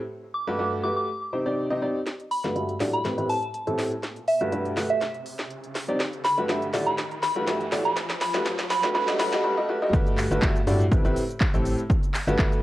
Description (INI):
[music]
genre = piano house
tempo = 122 BPM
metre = 4/4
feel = swing 53% on 16ths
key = G major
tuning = A4 = 437 Hz
[part]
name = soft synth bell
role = melody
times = 0.3-9.4 s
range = E5 to D6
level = -27 LUFS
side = right 1 dB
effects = chorus, phaser, cassette tape, analog delay
[part]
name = clear upright piano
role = riff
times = 0.5-12.6 s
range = G2 to E5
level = -26 LUFS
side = equal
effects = sidechain pumping, low-pass filter, cassette tape, analog delay
[part]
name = house drum kit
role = drums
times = 2.1-12.6 s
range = handclaps, hi-hat, shaker, snare drum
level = -31 LUFS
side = equal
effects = high-pass filter on snare, low-pass filter on snare, cassette tape, high-pass filter on hats, low-pass filter on hats, high-pass filter on perc, low-pass filter on perc
[part]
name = riser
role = sound effects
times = 4.1-9.4 s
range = none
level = -36 LUFS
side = equal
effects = none
[part]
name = organ-like FM bass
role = bass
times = 2.4-12.6 s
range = G1 to G2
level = -30 LUFS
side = equal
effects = sidechain pumping, high-pass filter
[part]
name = electronic kick drum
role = drums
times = 9.9-12.5 s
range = none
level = -23 LUFS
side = equal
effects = overdrive, cassette tape
[sound]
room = moderate studio reverb, RT60 0.6 s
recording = home recording on cassette, high-pass filter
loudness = -23 LUFS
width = side -15 dB against mid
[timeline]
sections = 0.0-2.1 A section; 2.1-9.9 B section; 9.9-12.6 C section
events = build-up 2.1-9.9; drum fill 2.1-9.4; filter sweep on upright piano 2.1-9.9; filter sweep 2.1-9.9; riser 4.1-9.4; drop 9.9-12.6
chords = 0.1 Gmaj9; 1.1 Cmadd9; 2.1 Gmaj9; 3.0 Am9; 4.0 Gmaj9; 5.0 Cmadd9; 6.0 Gmaj9; 8.9 Cm; 9.9 Gmaj9; 10.9 Am9; 11.9 Gmaj9